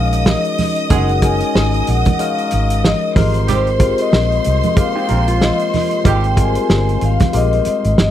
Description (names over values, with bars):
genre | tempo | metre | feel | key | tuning
lush 1970s-style soul | 93 BPM | 4/4 | swing 58% on 16ths | Ab major | A4 = 440 Hz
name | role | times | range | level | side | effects
vibraphone with soft mallets | melody | 0.0-8.1 s | C5 to Ab5 | -20 LUFS | left 2 dB | none
rich studio violin section | second line | 0.0-8.1 s | C5 to Eb6 | -25 LUFS | right 1 dB | none
barky tine electric piano | accompaniment | 0.0-8.1 s | G3 to Bb4 | -21 LUFS | left 5 dB | overdrive, phaser
vintage muted fingered electric bass | bass | 0.0-8.1 s | Gb1 to C2 | -17 LUFS | right 1 dB | none
warm soul drum kit | drums | 0.1-8.1 s | hi-hat, kick drum, snare drum | -16 LUFS | equal | none
congas | percussion | 0.3-8.1 s | none | -22 LUFS | right 6 dB | none
mellow horn section | stabs | 0.9-6.3 s | G3 to Ab4 | -23 LUFS | right 10 dB | none
electric guitar through a small old amp | riff | 5.0-6.2 s | Eb4 to Bb4 | -24 LUFS | right 4 dB | none
room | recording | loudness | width
studio reverb | dry, close 1970s-style studio recording | -13 LUFS | side -11 dB against mid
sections
0.0-8.1 A section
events
none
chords
0.0 Gb69; 3.2 Abmaj13